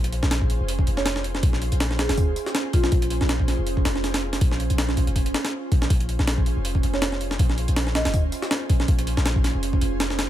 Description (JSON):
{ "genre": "drum and bass, jungle", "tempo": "161 BPM", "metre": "4/4", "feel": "swing 55% on 16ths", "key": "Bb minor", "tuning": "A4 = 440 Hz", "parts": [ { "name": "ethereal airy pad", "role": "sustained chords", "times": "0.0-10.3 s", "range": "Db4 to C5", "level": "-31 LUFS", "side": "right 2 dB", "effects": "ensemble chorus, built-in reverb" }, { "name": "warm 808-style bass", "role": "bass", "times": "0.0-10.3 s", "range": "F1 to Bb1", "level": "-25 LUFS", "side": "equal", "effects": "tube saturation" }, { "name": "jungle sampler-style drum kit", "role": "drums", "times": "0.0-10.3 s", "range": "hi-hat, kick drum, snare drum", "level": "-23 LUFS", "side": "equal", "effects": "none" }, { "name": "marimba with soft mallets", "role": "melody", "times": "1.0-3.3, 6.9-8.5 s", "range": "F4 to Eb5", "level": "-31 LUFS", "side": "equal", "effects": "vintage 12-bit sampler grit, dub echo" } ], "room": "digital ambience", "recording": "none", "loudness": "-20 LUFS", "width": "side -12 dB against mid", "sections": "0.0-10.3 A section", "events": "none", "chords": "0.0 Bbm7" }